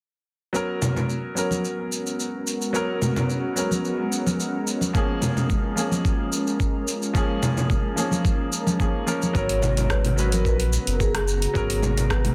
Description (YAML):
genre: sunset chillout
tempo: 109 BPM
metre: 4/4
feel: straight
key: G# dorian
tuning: A4 = 440 Hz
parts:
  - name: clear concert grand piano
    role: accompaniment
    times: 0.5-12.3 s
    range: E#3 to B4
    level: -31 LUFS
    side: equal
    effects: low-pass filter, delay
  - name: shimmering ambient pad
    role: sustained chords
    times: 1.8-12.3 s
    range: C#3 to A#5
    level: -32 LUFS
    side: equal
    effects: chorus, built-in reverb
  - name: deep house drum kit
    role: drums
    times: 0.5-12.3 s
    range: congas, hi-hat, rim click, shaker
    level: -29 LUFS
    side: equal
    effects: soft clipping on snare
  - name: congas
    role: percussion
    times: 0.8-11.9 s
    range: none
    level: -31 LUFS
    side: equal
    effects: none
  - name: electronic kick drum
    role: drums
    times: 4.9-12.2 s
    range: none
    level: -27 LUFS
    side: equal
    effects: overdrive
  - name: round analog bass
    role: bass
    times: 9.3-12.3 s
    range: F#1 to A#1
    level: -26 LUFS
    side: equal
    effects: none
  - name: vibraphone with soft mallets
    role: melody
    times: 9.4-12.3 s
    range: G#4 to C#5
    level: -30 LUFS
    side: equal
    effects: delay
room: moderate plate reverb, RT60 1.1 s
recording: dense, heavily limited modern master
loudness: -24 LUFS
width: mono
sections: 0.5-9.4 A section; 9.4-12.3 B section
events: none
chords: 0.5 G#m11; 4.9 A#m7; 9.4 G#m11